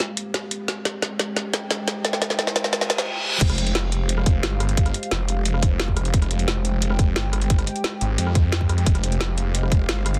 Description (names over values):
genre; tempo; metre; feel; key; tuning
dark technical drum and bass; 176 BPM; 4/4; straight; F minor; A4 = 441 Hz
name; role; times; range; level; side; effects
dark analog pad; sustained chords; 0.0-10.2 s; Ab3 to G5; -33 LUFS; equal; chorus, phaser, sidechain pumping
drum and bass drum kit; drums; 0.0-10.2 s; crash cymbal, hi-hat, rim click, snare drum; -27 LUFS; equal; none
riser and reverse cymbal; sound effects; 2.3-3.4 s; none; -33 LUFS; equal; none
snarling distorted saw bass; bass; 3.4-10.2 s; F1 to F2; -25 LUFS; equal; distortion, overdrive
electronic kick drum; drums; 3.4-9.8 s; none; -21 LUFS; equal; none
room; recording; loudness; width
little or no reverb; dense, heavily limited modern master, high-pass filter; -22 LUFS; mono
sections
0.0-3.4 A section; 3.4-10.2 B section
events
build-up 0.0-3.4; drum fill 0.0-3.1; filter sweep on analog synth pad 0.0-3.4; reverse cymbal 2.7-3.4; drop 3.4-10.2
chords
0.0 Fmadd9